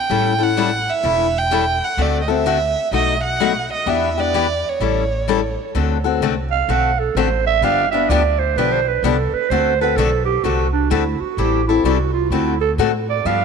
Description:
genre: acoustic string swing (jazz manouche).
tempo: 128 BPM.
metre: 4/4.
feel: swing 64% on 8ths.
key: D mixolydian.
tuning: A4 = 439 Hz.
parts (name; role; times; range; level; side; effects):
warm violin; melody; 0.0-5.6 s; C#5 to G5; -20 LUFS; right 4 dB; tape echo.
picked steel-string acoustic guitar; accompaniment; 0.1-13.4 s; B2 to A4; -20 LUFS; left 11 dB; none.
upright bass; bass; 0.1-13.4 s; E1 to A2; -22 LUFS; right 1 dB; none.
growling clarinet; second line; 6.5-13.4 s; D4 to F#5; -19 LUFS; right 10 dB; none.
room: moderate plate reverb, RT60 2.9 s.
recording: 1960s-style stereo with parts hard left and right.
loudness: -16 LUFS.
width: side -6 dB against mid.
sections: 0.0-5.7 A section; 5.7-13.4 B section.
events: clarinet solo 5.7-13.4.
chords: 0.1 A7; 2.0 D7; 2.9 B7; 3.9 Em7; 4.8 A7; 5.7 D7; 7.6 G7; 9.5 D7; 11.4 Am7; 12.3 D7.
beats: | 0.10 0.58 1.05 1.52 | 1.99 2.46 2.93 3.40 | 3.87 4.34 4.81 5.28 | 5.75 6.22 6.68 7.15 | 7.62 8.09 8.56 9.03 | 9.50 9.97 10.44 10.91 | 11.38 11.85 12.32 12.79 | 13.26.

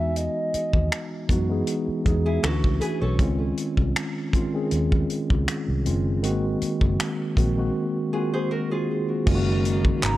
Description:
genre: contemporary R&B.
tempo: 79 BPM.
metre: 4/4.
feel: swing 54% on 16ths.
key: unclear.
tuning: A4 = 440 Hz.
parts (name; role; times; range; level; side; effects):
hollow clarinet-like synth lead; melody; 0.0-1.3, 10.0-10.2 s; D#5 to Bb5; -28 LUFS; equal; chorus, digital delay.
mellow tine electric piano; accompaniment; 0.0-10.2 s; Eb3 to C5; -25 LUFS; equal; medium stereo tremolo.
vintage muted fingered electric bass; bass; 0.0-10.2 s; Gb1 to F#2; -25 LUFS; equal; none.
tight funk drum kit; drums; 0.2-10.2 s; crash cymbal, finger snaps, handclaps, hi-hat, kick drum; -24 LUFS; equal; none.
nylon-string guitar; arpeggios; 2.3-3.4, 8.1-9.2 s; E4 to C#5; -31 LUFS; right 1 dB; digital delay.
hollow soft pad; sustained chords; 9.3-10.2 s; Db3 to Eb4; -33 LUFS; equal; chorus.
room: small room reverb.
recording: worn, warbling old tape, cassette tape, warbly pitch drift.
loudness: -21 LUFS.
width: side -15 dB against mid.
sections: 0.0-9.3 A section.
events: break 7.8-9.3.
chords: 0.0 Emaj9; 2.4 Dmaj9; 3.2 Dbmaj9; 6.2 Ab9; 9.3 Gb69.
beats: | 0.16 0.92 1.68 2.43 | 3.19 3.95 4.71 5.47 | 6.23 6.99 7.75 8.51 | 9.27 10.03.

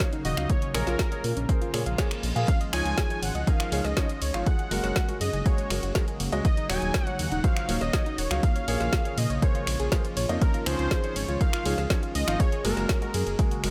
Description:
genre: progressive house.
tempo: 121 BPM.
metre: 4/4.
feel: straight.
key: Db major.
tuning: A4 = 440 Hz.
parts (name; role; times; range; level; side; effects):
evolving wavetable pad; sustained chords; 0.0-13.7 s; Db3 to Gb4; -40 LUFS; equal; none.
felt-muted upright piano; stabs; 0.0-13.7 s; F3 to F5; -36 LUFS; equal; sidechain pumping, delay.
deep house drum kit; drums; 0.0-13.7 s; finger snaps, hi-hat, ride cymbal, snare drum; -35 LUFS; equal; sidechain pumping on hats, sidechain pumping on cymbals.
electronic kick drum; drums; 0.0-13.5 s; none; -27 LUFS; equal; none.
soft round pluck; arpeggios; 0.1-13.6 s; Bb3 to F5; -37 LUFS; equal; chorus, sidechain pumping, delay.
dark detuned saw bass; bass; 0.2-13.7 s; Eb1 to Bb2; -32 LUFS; equal; sidechain pumping.
unison lead; melody; 0.3-13.6 s; Bb4 to Ab5; -36 LUFS; equal; delay.
reverse cymbal; sound effects; 1.8-2.5 s; none; -42 LUFS; equal; none.
room: little or no reverb.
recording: none.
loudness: -26 LUFS.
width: mono.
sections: 0.0-13.7 A section.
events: reverse cymbal 1.8-2.5.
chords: 0.5 Bbm7; 2.5 Dbadd9; 4.5 Gbadd9; 6.4 Ebm7; 8.4 Bbm7; 10.4 Dbadd9; 12.4 Gbadd9.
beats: 0.00 | 0.50 0.99 1.49 1.99 | 2.48 2.98 3.47 3.97 | 4.46 4.96 5.46 5.95 | 6.45 6.94 7.44 7.94 | 8.43 8.93 9.42 9.92 | 10.41 10.91 11.41 11.90 | 12.40 12.89 13.39.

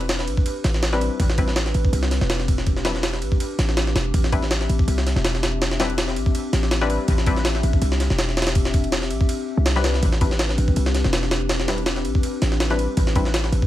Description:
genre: drum and bass, jungle.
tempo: 163 BPM.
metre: 4/4.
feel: swing 54% on 16ths.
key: A minor.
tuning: A4 = 439 Hz.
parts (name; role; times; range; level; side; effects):
warbly tape-like pad; sustained chords; 0.0-13.7 s; C4 to E5; -28 LUFS; left 2 dB; chorus, built-in reverb, vintage 12-bit sampler grit.
warm 808-style bass; bass; 0.0-13.7 s; E1 to C2; -22 LUFS; equal; none.
jungle sampler-style drum kit; drums; 0.0-13.7 s; kick drum, ride cymbal, snare drum; -22 LUFS; equal; studio reverb.
filtered dub chord stab; stabs; 0.9-7.4, 9.8-13.3 s; G3 to B4; -28 LUFS; left 4 dB; chorus, cassette tape, dub echo.
room: little or no reverb.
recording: vinyl crackle.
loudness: -19 LUFS.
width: side -14 dB against mid.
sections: 0.0-13.7 A section.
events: none.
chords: 0.0 Am11.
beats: 0.09 0.46 0.83 | 1.20 1.56 1.93 2.30 | 2.67 3.04 3.40 3.77 | 4.14 4.51 4.88 5.24 | 5.61 5.98 6.35 6.72 | 7.08 7.45 7.82 8.19 | 8.56 8.93 9.29 9.66 | 10.03 10.40 10.77 11.13 | 11.50 11.87 12.24 12.61 | 12.97 13.34.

